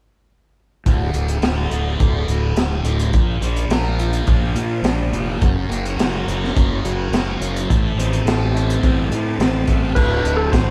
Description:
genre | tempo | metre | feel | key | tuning
psychedelic rock | 106 BPM | 4/4 | straight | unclear | A4 = 436 Hz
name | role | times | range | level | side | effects
thick fuzz guitar | riff | 0.9-10.7 s | D2 to Bb4 | -25 LUFS | equal | distortion, phaser
fuzz fingered electric bass | bass | 0.9-10.7 s | D1 to Bb2 | -24 LUFS | equal | overdrive
crunchy breakbeat drum kit | drums | 0.9-10.7 s | crash cymbal, hi-hat, kick drum, snare drum | -22 LUFS | equal | none
bright tonewheel organ | sustained chords | 5.4-10.7 s | F#3 to A#5 | -35 LUFS | equal | slow rotary speaker, overdrive
clean lap steel guitar | melody | 10.0-10.7 s | A4 to C5 | -23 LUFS | equal | none
room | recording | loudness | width
moderate small room reverb, RT60 0.5 s | band playing live in one room, faint mains hum | -19 LUFS | mono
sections
0.9-10.0 A section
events
none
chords
0.9 D; 3.1 Bb; 5.4 F#; 7.7 Am; 10.0 D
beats
| 0.87 1.44 2.01 2.58 | 3.15 3.71 4.28 4.85 | 5.42 5.99 6.56 7.12 | 7.69 8.26 8.82 9.39 | 9.96 10.52

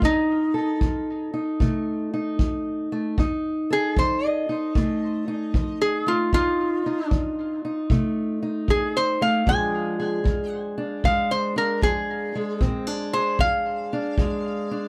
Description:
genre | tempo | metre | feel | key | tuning
acoustic country blues, solo or duo | 76 BPM | 4/4 | swing 66% on 8ths | unclear | A4 = 440 Hz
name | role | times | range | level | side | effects
lap resonator guitar | melody | 0.0-14.9 s | Eb4 to Ab5 | -26 LUFS | equal | tape echo
fingerpicked steel-string acoustic guitar | accompaniment | 0.0-14.9 s | F2 to A4 | -28 LUFS | equal | none
kick drum | drums | 0.0-14.4 s | none | -26 LUFS | equal | none
room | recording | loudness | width
little or no reverb | none | -24 LUFS | mono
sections
0.0-14.9 A section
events
resonator guitar played with a steel bar solo 0.0-14.9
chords
0.0 F7; 9.5 Bb7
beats
| 0.03 0.82 1.61 2.40 | 3.18 3.97 4.76 5.55 | 6.33 7.12 7.90 8.69 | 9.47 10.25 11.04 11.82 | 12.60 13.38 14.17

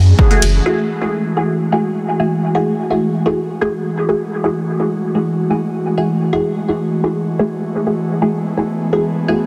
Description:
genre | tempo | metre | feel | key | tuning
dub techno | 127 BPM | 4/4 | straight | F# minor | A4 = 439 Hz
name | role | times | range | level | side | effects
airy breathy pad | sustained chords | 0.0-9.5 s | E3 to F#4 | -21 LUFS | equal | chorus, sidechain pumping
warm sub bass | bass | 0.0-0.6 s | F#1 to F#2 | -12 LUFS | equal | sidechain pumping
filtered dub chord stab | stabs | 0.3-9.4 s | A3 to G#4 | -21 LUFS | equal | phaser, dub echo
deep house drum kit | drums | 0.4-0.5 s | hi-hat, ride cymbal | -27 LUFS | equal | overdrive, low-pass filter on hats, studio reverb, low-pass filter on cymbals, low-pass filter on snare, dub echo
room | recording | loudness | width
moderate huge ambient reverb, RT60 4.1 s | dense, heavily limited modern master | -17 LUFS | mono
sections
0.7-9.5 A section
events
filter sweep on synth stab 0.7-9.5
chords
0.0 F#m9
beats
0.19 | 0.66 1.13 1.60 2.08 | 2.55 3.02 3.49 3.97 | 4.44 4.91 5.38 5.86 | 6.33 6.80 7.27 7.75 | 8.22 8.69 9.16

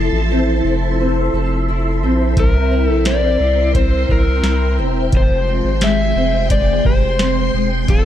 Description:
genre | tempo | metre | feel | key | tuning
dream pop | 87 BPM | 4/4 | straight | unclear | A4 = 440 Hz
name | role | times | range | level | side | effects
phased string machine | sustained chords | 0.0-8.1 s | Ab3 to C6 | -24 LUFS | right 1 dB | ensemble chorus, phaser
fingerpicked twelve-string acoustic guitar | arpeggios | 0.0-8.1 s | C3 to Bb4 | -20 LUFS | left 2 dB | ensemble chorus, ping-pong delay
saturated sub bass | bass | 0.0-8.1 s | D1 to C2 | -18 LUFS | equal | none
overdriven slide guitar | melody | 2.4-8.1 s | A4 to E5 | -20 LUFS | left 3 dB | ping-pong delay
booming analog drum machine | drums | 2.4-8.1 s | hi-hat, kick drum, snare drum | -16 LUFS | equal | none
room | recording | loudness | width
light reverb | dark, warm production | -13 LUFS | side -11 dB against mid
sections
0.0-8.1 A section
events
none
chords
0.0 Fmaj7; 2.4 C7; 5.1 Fmadd9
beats
0.30 0.99 1.68 | 2.37 3.06 3.75 4.44 | 5.13 5.82 6.51 7.20 | 7.88

